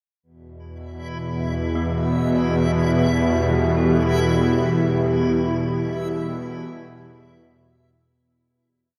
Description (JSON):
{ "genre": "dark ambient drone", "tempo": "free time", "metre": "none", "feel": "none", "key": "unclear", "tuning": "A4 = 440 Hz", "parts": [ { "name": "deep dark ambient pad", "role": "sustained chords", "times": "2.6-8.2 s", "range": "B3 to E5", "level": "-26 LUFS", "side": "equal", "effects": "chorus, built-in reverb, shimmer reverb" }, { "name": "bowed-like drone", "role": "drone", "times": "0.7-8.3 s", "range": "E2 to B2", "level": "-24 LUFS", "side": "equal", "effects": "built-in reverb" }, { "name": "backwards swelling texture", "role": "texture", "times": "1.0-8.2 s", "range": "E4 to E5", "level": "-32 LUFS", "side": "equal", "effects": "built-in reverb, shimmer reverb" }, { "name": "gamelan-type bronze metallophone", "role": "arpeggios", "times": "1.8-9.0 s", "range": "E3 to A4", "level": "-33 LUFS", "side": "equal", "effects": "none" } ], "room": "wet huge ambient reverb, RT60 8.2 s", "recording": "none", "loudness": "-21 LUFS", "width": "mono", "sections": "0.2-8.2 A section", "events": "fade-out 4.2-8.2", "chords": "0.2 Em" }